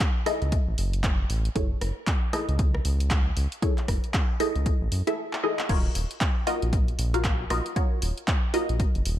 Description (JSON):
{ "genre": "deep house", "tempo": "116 BPM", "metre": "4/4", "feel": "swing 60% on 16ths", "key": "unclear", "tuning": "A4 = 440 Hz", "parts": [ { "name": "filtered dub chord stab", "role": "stabs", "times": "0.0-9.2 s", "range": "Fb4 to F5", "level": "-29 LUFS", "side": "left 1 dB", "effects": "phaser, sidechain pumping, ping-pong delay" }, { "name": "deep house drum kit", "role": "drums", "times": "0.0-9.2 s", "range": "crash cymbal, handclaps, hi-hat, rim click", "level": "-32 LUFS", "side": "equal", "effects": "overdrive" }, { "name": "electronic kick drum", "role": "drums", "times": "0.0-8.9 s", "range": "none", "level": "-25 LUFS", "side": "equal", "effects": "overdrive" }, { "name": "round analog bass", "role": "bass", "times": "0.4-9.2 s", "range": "Eb1 to Gb2", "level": "-26 LUFS", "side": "equal", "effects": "sidechain pumping" } ], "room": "light reverb", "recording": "none", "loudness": "-23 LUFS", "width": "side -12 dB against mid", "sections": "0.0-5.7 A section; 5.7-9.2 B section", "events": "break 5.2-5.7; drum fill 5.3-5.7; drop 5.7-9.2", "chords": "0.0 Gbm9; 5.7 Ebm9" }